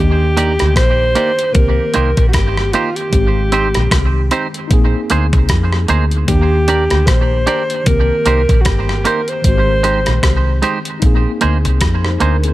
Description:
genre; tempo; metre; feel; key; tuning
lovers rock reggae; 76 BPM; 4/4; swing 59% on 16ths; Eb major; A4 = 440 Hz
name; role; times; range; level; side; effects
mellow alto saxophone; melody; 0.0-10.9 s; F4 to C5; -18 LUFS; equal; tape echo
tine electric piano; accompaniment; 0.0-12.5 s; D3 to Eb5; -22 LUFS; left 1 dB; overdrive, fast stereo tremolo
vintage muted fingered electric bass; bass; 0.0-12.5 s; G1 to F2; -15 LUFS; equal; none
semi-hollow electric guitar; stabs; 0.4-12.4 s; Ab3 to D5; -20 LUFS; right 5 dB; tape echo
crisp 8-bit digital drum machine; drums; 0.4-12.5 s; hi-hat, kick drum, rim click; -16 LUFS; equal; none
room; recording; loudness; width
little or no reverb; none; -12 LUFS; side -16 dB against mid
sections
0.0-12.5 A section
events
none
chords
0.0 Ebmaj7; 1.6 Cm7; 3.1 Abmaj7; 4.7 Bb9sus4; 6.3 Ebmaj7; 7.9 Cm7; 9.4 Abmaj7; 11.0 Bb9sus4

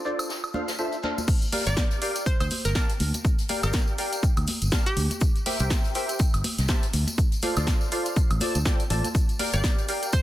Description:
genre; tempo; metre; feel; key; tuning
piano house; 122 BPM; 4/4; swing 58% on 16ths; G dorian; A4 = 440 Hz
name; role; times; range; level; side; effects
percussive organ stab; riff; 0.0-10.1 s; D4 to A5; -30 LUFS; equal; ensemble chorus, sidechain pumping
loose indie drum kit; drums; 0.0-10.2 s; hi-hat, shaker, snare drum; -38 LUFS; left 2 dB; sidechain pumping on hats, high-pass filter on hats, low-pass filter on hats, high-pass filter on snare, low-pass filter on snare, sidechain pumping on perc, high-pass filter on perc, low-pass filter on perc, high-pass filter on room, low-pass filter on room
punchy analog drum machine; drums; 0.2-10.1 s; crash cymbal, hi-hat, snare drum, woodblock; -31 LUFS; equal; low-pass filter on perc, low-pass filter on cymbals, low-pass filter on hats, low-pass filter on snare
tambourine and congas; percussion; 0.2-10.2 s; none; -34 LUFS; left 1 dB; none
electronic kick drum; drums; 1.3-10.2 s; none; -23 LUFS; equal; none
hollow square pluck; melody; 1.7-5.3, 9.5-10.2 s; G4 to D5; -33 LUFS; right 1 dB; chorus, tape echo
fingered electric bass; bass; 1.7-9.6 s; G1 to D2; -25 LUFS; equal; sidechain pumping
room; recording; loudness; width
light reverb; dense, heavily limited modern master; -22 LUFS; side -14 dB against mid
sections
0.0-1.3 A section; 1.3-10.2 B section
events
drop 1.3-10.2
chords
0.0 Dm7; 1.3 Gm7; 5.2 C7; 6.9 Dm7; 9.1 Gm7

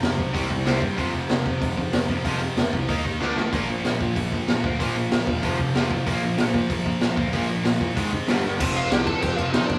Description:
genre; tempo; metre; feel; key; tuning
punk rock; 189 BPM; 4/4; straight; F mixolydian; A4 = 440 Hz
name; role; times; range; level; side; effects
distorted electric guitar; riff; 0.0-9.8 s; F2 to Eb4; -34 LUFS; equal; none
heavy high-gain guitar; riff; 0.0-8.6 s; F2 to Eb4; -31 LUFS; equal; distortion
overdriven electric guitar; riff; 0.0-9.8 s; F2 to Eb4; -31 LUFS; equal; none
fuzz picked electric bass; bass; 0.0-9.8 s; E1 to Bb2; -31 LUFS; equal; overdrive
raw garage drum kit; drums; 0.0-9.8 s; crash cymbal, hi-hat, kick drum, snare drum; -28 LUFS; equal; none
smooth overdriven lead guitar; melody; 8.8-9.8 s; D4 to A5; -28 LUFS; equal; none
room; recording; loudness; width
moderate studio reverb, RT60 0.6 s; band playing live in one room, small room ambience; -23 LUFS; mono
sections
0.0-8.6 A section; 8.6-9.8 B section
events
drum fill 3.2-3.5, 8.4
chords
0.3 C5; 1.0 F5; 2.9 Eb5; 3.2 D5; 3.5 Bb5; 5.4 F5; 6.1 Bb5; 8.0 Ab5; 8.3 G5; 8.6 F

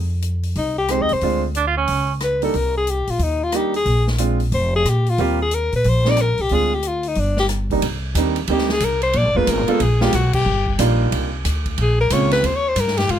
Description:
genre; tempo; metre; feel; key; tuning
jazz, small-group swing and bop; 182 BPM; 4/4; swing 64% on 8ths; Eb major, C minor from 7.8 s; A4 = 440 Hz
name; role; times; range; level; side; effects
upright bass; bass; 0.0-13.2 s; F1 to Bb2; -20 LUFS; equal; none
swinging big-band drum kit; drums; 0.2-13.2 s; crash cymbal, hi-hat, kick drum, ride cymbal, rim click, snare drum; -28 LUFS; equal; none
clear alto saxophone; melody; 0.6-13.2 s; D4 to Eb5; -20 LUFS; left 2 dB; none
clear concert grand piano; accompaniment; 0.9-12.4 s; C3 to G4; -22 LUFS; right 5 dB; none
clear tenor saxophone; second line; 1.6-2.1 s; Db4 to F4; -19 LUFS; right 7 dB; none
room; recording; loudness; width
little or no reverb; close, detailed microphones; -17 LUFS; side -10 dB against mid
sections
0.0-7.8 A section; 7.8-13.2 B section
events
band accent 10.3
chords
0.0 Fm9; 1.2 Dm7b5; 1.9 Dbsus2; 2.5 Cm9; 3.9 Bb9; 5.2 Eb6; 6.5 Dm7b5; 7.2 G5; 7.8 Cm9; 9.1 Bb7b9; 10.5 Ebmaj9; 11.8 Bbm7; 12.4 Eb

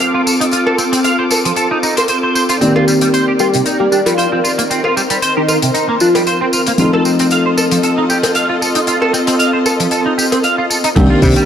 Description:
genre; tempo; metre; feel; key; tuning
nu-disco, nu disco; 115 BPM; 4/4; swing 54% on 16ths; unclear; A4 = 439 Hz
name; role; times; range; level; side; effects
dark baby grand piano; accompaniment; 0.0-11.5 s; Eb3 to D5; -16 LUFS; left 1 dB; low-pass filter, slapback echo
clear symphonic string section; sustained chords; 0.0-11.5 s; Eb3 to D6; -17 LUFS; equal; sidechain pumping, low-pass filter
clean electric guitar; riff; 0.0-11.4 s; C3 to F5; -16 LUFS; right 2 dB; ensemble chorus, low-pass filter, slapback echo
damped 70s drum kit; drums; 0.0-11.5 s; crash cymbal, hi-hat, tambourine; -20 LUFS; left 3 dB; none
cowbell; percussion; 0.7-10.4 s; none; -23 LUFS; left 1 dB; none
wide unison lead; melody; 3.4-6.4 s; Eb4 to G4; -16 LUFS; equal; analog chorus, tape echo
dry thumbed slap bass; bass; 11.0-11.3 s; C2 to C3; -12 LUFS; equal; none
electronic kick drum; drums; 11.0-11.3 s; none; -13 LUFS; equal; none
room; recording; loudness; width
wet plate reverb, RT60 2.0 s, small room ambience; dark, warm production; -11 LUFS; side -8 dB against mid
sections
0.0-11.0 A section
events
filter sweep on grand piano 0.0-11.0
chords
0.0 F7; 2.6 Cm9; 6.8 F7

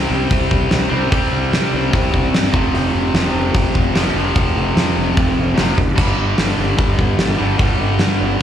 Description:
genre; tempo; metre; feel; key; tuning
classic rock; 148 BPM; 4/4; straight; unclear; A4 = 440 Hz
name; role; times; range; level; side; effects
tight distorted guitar; riff; 0.0-8.4 s; F2 to C4; -18 LUFS; left 1 dB; distortion, slapback echo
fuzz fingered electric bass; bass; 0.0-8.4 s; F1 to C3; -20 LUFS; equal; overdrive
huge arena drum kit; drums; 0.3-8.1 s; crash cymbal, hi-hat, kick drum, snare drum; -18 LUFS; equal; none
room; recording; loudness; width
little or no reverb; live gig heard through the venue's PA, club reverb; -14 LUFS; side -10 dB against mid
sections
0.0-8.4 A section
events
none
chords
0.0 C5; 2.5 F5; 6.0 G5

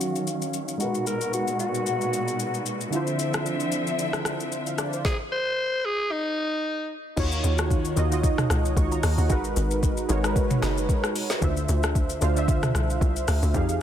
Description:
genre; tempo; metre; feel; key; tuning
amapiano; 113 BPM; 4/4; swing 55% on 16ths; unclear; A4 = 438 Hz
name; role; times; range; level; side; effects
growling alto saxophone; melody; 0.0-6.9 s; Eb4 to C5; -28 LUFS; left 1 dB; low-pass filter, ping-pong delay
warm analog keys; accompaniment; 0.0-13.8 s; D3 to Db6; -28 LUFS; right 1 dB; chorus, low-pass filter
bright studio string section; sustained chords; 0.0-5.0 s; Bb2 to F5; -29 LUFS; left 1 dB; low-pass filter
smooth R&B drum kit; drums; 0.0-13.8 s; crash cymbal, hi-hat, kick drum, rim click, shaker, snare drum, toms; -27 LUFS; equal; soft clipping on snare
hollow log drum bass; bass; 7.2-13.8 s; Gb1 to F2; -25 LUFS; equal; none
room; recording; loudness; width
light reverb; dense, heavily limited modern master; -23 LUFS; side -10 dB against mid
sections
0.0-7.2 A section; 7.2-13.8 B section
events
filter sweep 0.0-7.2; drop 7.2-13.8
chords
0.0 Ebm9; 0.8 Abm9; 2.9 Dm9; 5.0 N.C.; 7.2 Ebm9; 9.3 Abm9; 11.4 Dm9

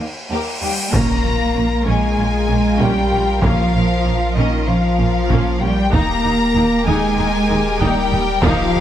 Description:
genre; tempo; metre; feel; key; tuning
cinematic, hybrid orchestral and electronic film score; 96 BPM; 4/4; straight; Bb dorian; A4 = 440 Hz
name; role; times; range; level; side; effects
warm symphonic violin section; second line; 0.0-8.8 s; Bb3 to Bb4; -26 LUFS; left 2 dB; none
rich symphonic cello section; bass; 0.0-8.8 s; Eb2 to Bb3; -22 LUFS; right 3 dB; none
cymbal swell and impact; sound effects; 0.0-3.4 s; none; -24 LUFS; equal; none
warm symphonic violin section; melody; 0.6-8.8 s; Eb5 to Bb5; -22 LUFS; left 4 dB; none
warm French horn section; sustained chords; 0.6-8.8 s; Eb3 to Bb3; -22 LUFS; left 3 dB; none
warm symphonic viola section; accompaniment; 0.9-8.8 s; Bb3 to Eb4; -25 LUFS; right 1 dB; none
dark symphonic double bass section; bass; 0.9-8.8 s; Bb1 to Eb2; -23 LUFS; right 3 dB; none
pure sine sub bass; bass; 0.9-8.8 s; Eb1 to Bb1; -23 LUFS; equal; none
taiko ensemble; drums; 0.9-8.8 s; none; -21 LUFS; equal; none
room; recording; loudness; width
light reverb; close, detailed microphones; -14 LUFS; side -11 dB against mid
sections
0.9-8.8 A section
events
cymbal swell 0.0-0.9; impact 0.9-3.4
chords
0.0 Eb; 0.9 Bbm; 5.9 Eb

